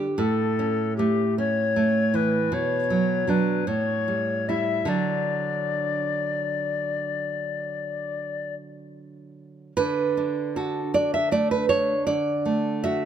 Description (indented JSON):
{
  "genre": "romantic duo for recorder and classical guitar",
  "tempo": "48-54 BPM (dotted quarters)",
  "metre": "12/8",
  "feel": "rubato",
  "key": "D major",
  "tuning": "A4 = 440 Hz",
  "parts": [
    { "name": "nylon-string guitar", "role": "accompaniment", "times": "0.0-13.1 s", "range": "A2 to E5", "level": "-24 LUFS", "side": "right 3 dB", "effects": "none" },
    { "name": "mellow tenor recorder", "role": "melody", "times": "0.2-8.5 s", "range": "G4 to E5", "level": "-26 LUFS", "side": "left 6 dB", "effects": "none" }
  ],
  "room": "light reverb",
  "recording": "close, detailed microphones",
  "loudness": "-22 LUFS",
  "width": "side -9 dB against mid",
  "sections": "0.0-9.8 A section; 9.8-13.1 A section",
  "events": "none",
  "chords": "0.2 A; 2.5 Bm; 3.7 A7; 4.9 D"
}